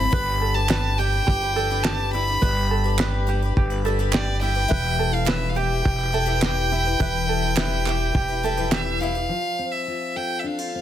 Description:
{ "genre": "indie folk with a building arrangement", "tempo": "105 BPM", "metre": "4/4", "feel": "straight", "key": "G mixolydian", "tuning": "A4 = 440 Hz", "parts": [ { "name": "clear fiddle", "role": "melody", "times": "0.0-10.8 s", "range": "D5 to B5", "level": "-25 LUFS", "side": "right 1 dB", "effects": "digital delay" }, { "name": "picked twelve-string acoustic guitar", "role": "accompaniment", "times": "0.0-9.3 s", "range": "E3 to C5", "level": "-29 LUFS", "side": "left 10 dB", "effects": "none" }, { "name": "ukulele", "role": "arpeggios", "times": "0.0-9.3 s", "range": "E4 to B4", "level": "-29 LUFS", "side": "right 7 dB", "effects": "none" }, { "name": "upright bass", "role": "bass", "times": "0.0-9.3 s", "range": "E1 to G1", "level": "-25 LUFS", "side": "equal", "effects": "none" }, { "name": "cloth-damped thuddy drum kit", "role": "drums", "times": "0.1-8.9 s", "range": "kick drum, snare drum", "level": "-24 LUFS", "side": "equal", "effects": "none" }, { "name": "group handclap", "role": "percussion", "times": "0.7-8.9 s", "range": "none", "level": "-30 LUFS", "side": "right 9 dB", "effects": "none" }, { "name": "fingerpicked steel-string acoustic guitar", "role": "accompaniment", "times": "9.3-10.8 s", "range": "F3 to A4", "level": "-29 LUFS", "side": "left 5 dB", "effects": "none" } ], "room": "light reverb, small room ambience", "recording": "dense, heavily limited modern master", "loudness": "-20 LUFS", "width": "side -11 dB against mid", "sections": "0.0-9.3 A section; 9.3-10.8 B section", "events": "none", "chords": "0.1 G; 4.7 Em; 9.3 F" }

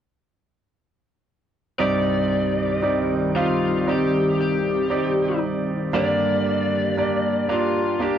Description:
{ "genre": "pop", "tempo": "58 BPM", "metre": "4/4", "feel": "straight", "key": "C minor", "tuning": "A4 = 440 Hz", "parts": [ { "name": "lead guitar through a small cranked amp", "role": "melody", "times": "1.8-8.2 s", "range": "F4 to D5", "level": "-24 LUFS", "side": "left 6 dB", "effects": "overdrive, cassette tape" }, { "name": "bright concert grand piano", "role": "accompaniment", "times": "1.8-8.2 s", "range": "C2 to F5", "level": "-22 LUFS", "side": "right 5 dB", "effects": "none" }, { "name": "glassy FM pad", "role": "sustained chords", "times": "1.8-8.2 s", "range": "Eb3 to D5", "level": "-27 LUFS", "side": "left 1 dB", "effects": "ensemble chorus, built-in reverb" } ], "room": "wet booth ambience, RT60 0.2 s", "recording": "home recording on cassette", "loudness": "-19 LUFS", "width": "side -9 dB against mid", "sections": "1.8-8.2 A section", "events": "none", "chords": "1.8 Cmadd9; 5.9 Gm" }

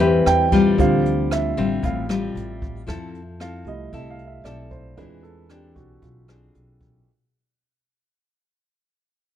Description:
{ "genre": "bossa nova", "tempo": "114 BPM", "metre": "4/4", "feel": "straight", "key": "unclear", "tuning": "A4 = 440 Hz", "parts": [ { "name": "nylon-string guitar", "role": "accompaniment", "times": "0.0-7.0 s", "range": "A2 to B4", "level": "-20 LUFS", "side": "left 4 dB", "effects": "none" }, { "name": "warm baby grand piano", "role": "accompaniment", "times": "0.0-7.1 s", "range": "F3 to G5", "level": "-24 LUFS", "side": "right 5 dB", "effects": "none" }, { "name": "upright bass", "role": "bass", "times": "0.0-7.0 s", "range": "A1 to F2", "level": "-28 LUFS", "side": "equal", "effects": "none" }, { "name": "jazz brush drum kit", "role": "drums", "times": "0.0-6.9 s", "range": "hi-hat, kick drum, rim click", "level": "-27 LUFS", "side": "equal", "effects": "none" } ], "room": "moderate large studio reverb, RT60 1.3 s", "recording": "dark, warm production", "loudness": "-17 LUFS", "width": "side -10 dB against mid", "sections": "0.0-7.1 A section", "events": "fade-out 0.0-7.1; grand piano solo 0.0-7.1", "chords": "0.0 Am9 (rootless); 0.8 Dm11; 2.9 Fmaj7; 5.0 E7b9b13" }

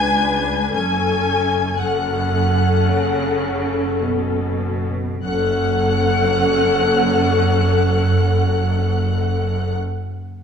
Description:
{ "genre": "classical, slow romantic movement for string orchestra", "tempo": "48-63 BPM", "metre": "4/4", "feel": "rubato", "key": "F# minor", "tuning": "A4 = 441 Hz", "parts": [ { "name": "rich studio violin section", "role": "melody", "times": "0.0-9.7 s", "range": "F#6 to G#6", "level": "-27 LUFS", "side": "left 4 dB", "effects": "none" }, { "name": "rich studio violin section", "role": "second line", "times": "0.0-9.7 s", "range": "F#5 to G#5", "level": "-23 LUFS", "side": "equal", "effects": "none" }, { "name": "rich studio viola section", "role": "accompaniment", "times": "0.0-9.7 s", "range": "C#4 to B4", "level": "-21 LUFS", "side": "left 3 dB", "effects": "none" }, { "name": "rich studio cello section", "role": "bass", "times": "0.0-9.7 s", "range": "C#2 to C#3", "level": "-23 LUFS", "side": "right 1 dB", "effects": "none" }, { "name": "rich studio double bass section", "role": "bass", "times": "0.0-9.7 s", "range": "F#1 to C#2", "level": "-22 LUFS", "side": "right 1 dB", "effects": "none" } ], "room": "light reverb", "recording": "none", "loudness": "-16 LUFS", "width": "side -7 dB against mid", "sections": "0.0-5.2 A section; 5.2-10.0 B section", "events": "slowing down 0.0-5.2", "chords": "0.0 C#5; 0.8 F#m" }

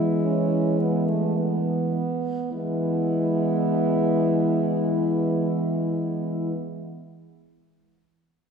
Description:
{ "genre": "classical, lyrical piece for horn quartet", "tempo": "54 BPM", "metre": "3/4", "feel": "rubato", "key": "E major", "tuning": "A4 = 439 Hz", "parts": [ { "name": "warm French horn", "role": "melody", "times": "0.0-6.5 s", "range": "E4", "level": "-28 LUFS", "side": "left 4 dB", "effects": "none" }, { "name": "warm French horn", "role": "second line", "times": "0.0-6.6 s", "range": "A3 to C#4", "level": "-28 LUFS", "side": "right 5 dB", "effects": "none" }, { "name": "mellow French horn", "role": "accompaniment", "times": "0.0-6.5 s", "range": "G#3", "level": "-28 LUFS", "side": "left 2 dB", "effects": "none" }, { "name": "mellow French horn", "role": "bass", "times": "0.0-6.5 s", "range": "E3", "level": "-26 LUFS", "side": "right 2 dB", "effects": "none" } ], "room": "wet concert hall reverb, RT60 1.9 s", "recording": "recorded in a church or concert hall", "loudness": "-22 LUFS", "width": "side -6 dB against mid", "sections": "0.0-2.5 A section; 2.5-5.8 B section", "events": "slowing down 0.0-2.5", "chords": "0.0 E" }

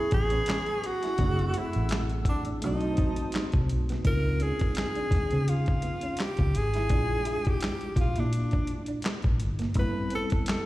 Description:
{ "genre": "R&B, neo-soul", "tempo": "84 BPM", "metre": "4/4", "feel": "swing 55% on 16ths", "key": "unclear", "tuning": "A4 = 441 Hz", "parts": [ { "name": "breathy tenor saxophone", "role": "melody", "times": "0.0-10.7 s", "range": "D4 to B4", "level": "-31 LUFS", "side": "equal", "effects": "slapback echo" }, { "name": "electric guitar at the edge of break-up", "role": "second line", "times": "0.0-10.2 s", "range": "A#3 to E#4", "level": "-38 LUFS", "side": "right 2 dB", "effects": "slapback echo" }, { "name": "mellow tine electric piano", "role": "accompaniment", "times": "0.0-10.7 s", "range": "G3 to G#5", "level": "-36 LUFS", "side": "equal", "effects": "medium stereo tremolo" }, { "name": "hollow soft pad", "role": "sustained chords", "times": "0.0-4.0, 9.8-10.7 s", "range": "A3 to E6", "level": "-42 LUFS", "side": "equal", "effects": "chorus" }, { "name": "vintage muted fingered electric bass", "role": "bass", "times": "0.1-10.4 s", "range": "F#1 to C#3", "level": "-28 LUFS", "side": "equal", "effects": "none" }, { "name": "dusty soul sampler-style drum kit", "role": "drums", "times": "0.1-10.7 s", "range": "handclaps, hi-hat, kick drum, snare drum", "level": "-29 LUFS", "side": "equal", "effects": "none" } ], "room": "digital ambience", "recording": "live gig heard through the venue's PA, recital hall reverb", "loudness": "-25 LUFS", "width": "side -17 dB against mid", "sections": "0.0-4.0 A section; 4.0-10.7 B section", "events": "none", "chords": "0.0 Amaj9; 1.2 F#m7b5; 2.6 B7b9; 4.0 C#maj9; 6.9 A#7#11; 9.8 Am7" }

